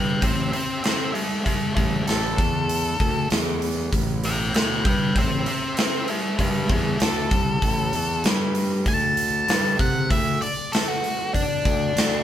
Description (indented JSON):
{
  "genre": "blues rock power trio and southern rock",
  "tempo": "97 BPM",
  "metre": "4/4",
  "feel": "straight",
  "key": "unclear",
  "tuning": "A4 = 440 Hz",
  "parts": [
    { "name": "octave-fuzz lead guitar", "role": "melody", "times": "0.0-12.2 s", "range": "D4 to A5", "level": "-24 LUFS", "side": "left 1 dB", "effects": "distortion, slapback echo" },
    { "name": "fuzz fingered electric bass", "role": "bass", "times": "0.0-12.2 s", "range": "A1 to C3", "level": "-25 LUFS", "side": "equal", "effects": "overdrive" },
    { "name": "big rock drum kit", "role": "drums", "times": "0.2-12.1 s", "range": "hi-hat, kick drum, snare drum", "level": "-24 LUFS", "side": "equal", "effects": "none" }
  ],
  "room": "moderate studio reverb, RT60 0.8 s",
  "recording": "band playing live in one room",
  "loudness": "-20 LUFS",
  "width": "side -10 dB against mid",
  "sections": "0.0-12.2 A section",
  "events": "lead electric guitar solo 0.0-12.2",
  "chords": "0.0 A5; 8.9 D5",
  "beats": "0.22 0.84 | 1.46 2.08 2.69 3.31 | 3.92 4.54 5.16 5.78 | 6.39 7.01 7.63 8.24 | 8.86 9.48 10.10 10.72 | 11.34 11.96"
}